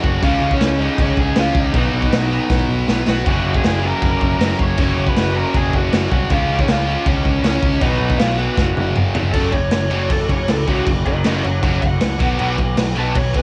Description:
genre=punk rock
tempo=158 BPM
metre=4/4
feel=straight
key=F# major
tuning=A4 = 438 Hz
part: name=lead guitar through a small cranked amp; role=melody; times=0.0-13.4 s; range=C#4 to C#6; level=-26 LUFS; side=equal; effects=overdrive, cassette tape, analog delay
part: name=raw garage guitar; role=riff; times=0.0-13.4 s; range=F#2 to C#4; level=-27 LUFS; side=equal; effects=overdrive, cassette tape
part: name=tight distorted guitar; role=riff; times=0.0-13.4 s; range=F#2 to C#4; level=-27 LUFS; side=equal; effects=distortion, cassette tape
part: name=picked electric bass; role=bass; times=0.0-13.4 s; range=F#1 to C#2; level=-24 LUFS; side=equal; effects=none
part: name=raw garage drum kit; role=drums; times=0.0-13.4 s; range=crash cymbal, kick drum, snare drum, toms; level=-21 LUFS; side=equal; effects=cassette tape
room=little or no reverb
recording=home recording on cassette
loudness=-17 LUFS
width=mono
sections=0.0-9.4 A section; 9.4-13.4 B section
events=drum fill 2.5-3.3, 8.6-9.4; lead electric guitar solo 9.4-13.4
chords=0.2 C#; 1.7 B; 3.3 F#; 6.3 C#; 7.8 B; 8.6 F#5; 12.2 B5

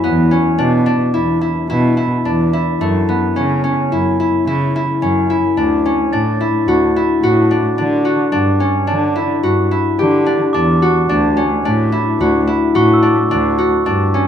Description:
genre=contemporary instrumental, chamber music in an uneven meter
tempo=108 BPM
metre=5/4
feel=straight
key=unclear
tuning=A4 = 439 Hz
part: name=concert harp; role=arpeggios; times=0.0-14.3 s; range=A3 to G4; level=-15 LUFS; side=left 2 dB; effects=none
part: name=muted cello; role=bass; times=0.0-14.3 s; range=D2 to D3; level=-17 LUFS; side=right 1 dB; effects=none
part: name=glockenspiel with soft plastic mallets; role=texture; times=6.1-13.5 s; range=C#6 to A6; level=-24 LUFS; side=right 2 dB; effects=none
room=light reverb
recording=none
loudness=-12 LUFS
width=side -9 dB against mid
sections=0.0-5.6 A section; 5.6-14.3 B section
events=none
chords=0.0 E5; 2.8 F#m7; 5.6 D; 8.3 G5; 11.1 D

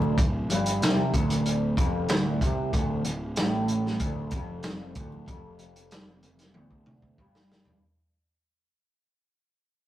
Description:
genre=psychedelic rock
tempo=94 BPM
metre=4/4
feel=straight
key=unclear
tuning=A4 = 441 Hz
part: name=electric guitar through a small old amp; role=riff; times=0.0-7.8 s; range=D2 to C3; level=-28 LUFS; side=right 1 dB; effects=phaser
part: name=fuzz picked electric bass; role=bass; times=0.0-7.8 s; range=D1 to C2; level=-35 LUFS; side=equal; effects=overdrive
part: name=congas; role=percussion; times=0.0-7.8 s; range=none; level=-40 LUFS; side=left 2 dB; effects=none
part: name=crunchy breakbeat drum kit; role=drums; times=0.2-7.8 s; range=hi-hat, kick drum, snare drum, toms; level=-28 LUFS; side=equal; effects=none
room=moderate stone room reverb, RT60 1.2 s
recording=rough rehearsal-room recording, warm saturation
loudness=-24 LUFS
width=side -13 dB against mid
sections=0.0-7.8 A section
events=fade-out 0.0-7.8; drum fill 6.5-7.8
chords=0.0 D5

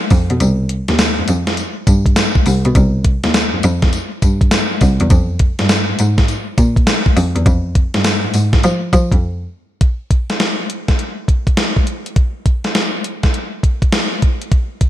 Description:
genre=R&B, new jack swing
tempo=102 BPM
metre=4/4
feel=swing 64% on 16ths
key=unclear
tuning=A4 = 440 Hz
part: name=clear cello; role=bass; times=0.1-9.2 s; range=C2 to F3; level=-15 LUFS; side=equal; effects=none
part: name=gated 80s digital drum machine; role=drums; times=0.1-14.9 s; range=hi-hat, kick drum, snare drum, tambourine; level=-14 LUFS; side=equal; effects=gated reverb, gated reverb snare
room=light reverb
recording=none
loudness=-13 LUFS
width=side -13 dB against mid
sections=0.0-9.8 A section; 9.8-14.9 B section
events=kick muted 0.4-1.6; break 9.2-9.8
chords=none

